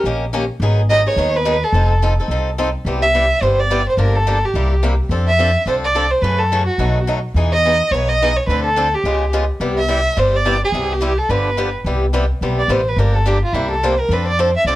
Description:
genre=acoustic string swing (jazz manouche)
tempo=213 BPM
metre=4/4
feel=swing 59% on 8ths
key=C major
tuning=A4 = 439 Hz
part: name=picked swing-style acoustic guitar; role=accompaniment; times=0.0-14.8 s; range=B2 to A#4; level=-21 LUFS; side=left 1 dB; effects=none
part: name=upright bass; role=bass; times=0.0-14.8 s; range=F1 to F#2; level=-18 LUFS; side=equal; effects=none
part: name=warm violin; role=melody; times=0.9-14.8 s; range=E4 to E5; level=-17 LUFS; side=right 1 dB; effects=none
room=light reverb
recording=dark, warm production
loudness=-14 LUFS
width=side -15 dB against mid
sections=0.0-2.9 A section; 2.9-11.9 B section; 11.9-14.8 C section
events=violin solo 11.9-14.8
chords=0.0 D#7; 0.6 G#m7; 1.7 F7; 2.9 Cmaj7; 4.0 Gm7; 4.5 C7; 5.1 F6; 6.2 F#m7; 6.8 B7; 7.4 Emaj7; 8.5 Dm7; 9.0 Db7#11; 9.6 Cmaj7; 11.3 G7; 11.9 Cmaj7; 13.0 Gm7; 13.5 C7; 14.1 F6

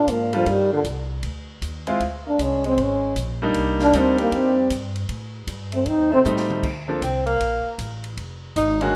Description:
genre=jazz, small-group swing and bop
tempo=156 BPM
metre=4/4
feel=swing 64% on 8ths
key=unclear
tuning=A4 = 440 Hz
part: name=breathy trombone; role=melody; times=0.0-6.2 s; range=D3 to Eb4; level=-21 LUFS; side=equal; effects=none
part: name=mellow tenor saxophone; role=second line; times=0.0-9.0 s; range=Bb2 to Eb4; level=-29 LUFS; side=equal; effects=none
part: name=upright bass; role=bass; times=0.0-8.9 s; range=F1 to A2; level=-32 LUFS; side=equal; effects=none
part: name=open jazz drum kit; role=drums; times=0.1-8.9 s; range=crash cymbal, hi-hat, kick drum, ride cymbal, snare drum, toms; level=-37 LUFS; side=equal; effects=none
part: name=clear grand piano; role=accompaniment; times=0.3-9.0 s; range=D3 to A4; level=-26 LUFS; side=equal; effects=none
room=moderate plate reverb, RT60 1.1 s, small room reverb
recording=rough home demo mix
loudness=-22 LUFS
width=mono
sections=0.0-6.6 A section; 6.6-9.0 B section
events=drum fill 6.2-6.6; tenor saxophone solo 6.6-9.0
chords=0.5 Ebmaj7; 2.0 Bb9; 2.8 C#sus2; 3.5 Cm9; 5.1 Gsus2; 5.9 F7; 6.6 Bbmaj7; 8.2 Gbmaj13/F

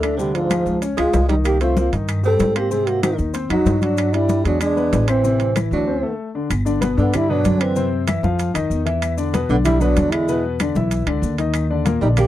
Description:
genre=Afro-Cuban jazz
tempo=190 BPM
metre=4/4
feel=straight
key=unclear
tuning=A4 = 440 Hz
part: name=trombone with bucket mute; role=melody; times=0.0-12.3 s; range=F3 to A4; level=-20 LUFS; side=right 1 dB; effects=none
part: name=breathy tenor saxophone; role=second line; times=0.0-12.3 s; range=Ab2 to C4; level=-26 LUFS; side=right 7 dB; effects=none
part: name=warm concert grand piano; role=accompaniment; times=0.0-12.3 s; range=Bb2 to F5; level=-23 LUFS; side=left 4 dB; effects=none
part: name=upright bass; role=bass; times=0.0-12.3 s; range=G1 to Ab2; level=-21 LUFS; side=equal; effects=none
part: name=claves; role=percussion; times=0.0-12.3 s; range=none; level=-35 LUFS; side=left 12 dB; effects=none
part: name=maracas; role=percussion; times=0.0-12.3 s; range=none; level=-40 LUFS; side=left 13 dB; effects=none
part: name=timbales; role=percussion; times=0.0-12.3 s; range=none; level=-29 LUFS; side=right 7 dB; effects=none
part: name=congas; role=percussion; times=0.2-12.3 s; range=none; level=-25 LUFS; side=left 2 dB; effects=none
room=little or no reverb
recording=dry, close 1970s-style studio recording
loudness=-16 LUFS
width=side -13 dB against mid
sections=0.0-6.5 A section; 6.5-12.3 B section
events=break 5.9-6.5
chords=0.2 Ddim; 0.8 C#add9; 1.5 Cm; 2.7 Ab7; 4.0 G5; 4.6 E7; 5.2 Am; 5.9 D7; 6.5 Gmaj7; 7.8 Cadd11; 8.4 Ebsus2; 9.0 Esus2; 10.3 E5; 11.5 Eb5

